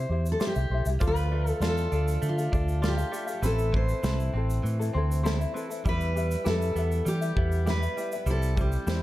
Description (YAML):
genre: acoustic pop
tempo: 99 BPM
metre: 4/4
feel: straight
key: unclear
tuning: A4 = 440 Hz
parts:
  - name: fingerpicked steel-string acoustic guitar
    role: melody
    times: 0.0-9.0 s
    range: F4 to C5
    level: -32 LUFS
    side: equal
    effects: plate reverb, digital delay
  - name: ukulele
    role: accompaniment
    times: 0.0-9.0 s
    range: C4 to F5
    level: -34 LUFS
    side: left 5 dB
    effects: plate reverb
  - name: fretless electric bass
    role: bass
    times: 0.0-9.0 s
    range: A1 to E3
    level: -26 LUFS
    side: equal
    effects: none
  - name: natural country drum kit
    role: drums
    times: 0.3-9.0 s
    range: kick drum, shaker, snare drum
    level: -32 LUFS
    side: right 1 dB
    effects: none
  - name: direct-recorded clean electric guitar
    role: arpeggios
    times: 1.0-9.0 s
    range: E3 to F4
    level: -38 LUFS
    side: right 3 dB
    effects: spring reverb, plate reverb, digital delay
room: light reverb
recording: none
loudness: -24 LUFS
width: side -16 dB against mid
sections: 0.0-9.0 A section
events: none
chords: 0.0 C; 1.0 Dm; 3.4 Am; 5.9 Em; 8.3 C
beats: 0.41 | 1.01 1.62 2.22 2.83 | 3.43 4.04 4.64 5.25 | 5.85 6.46 7.06 7.67 | 8.27 8.87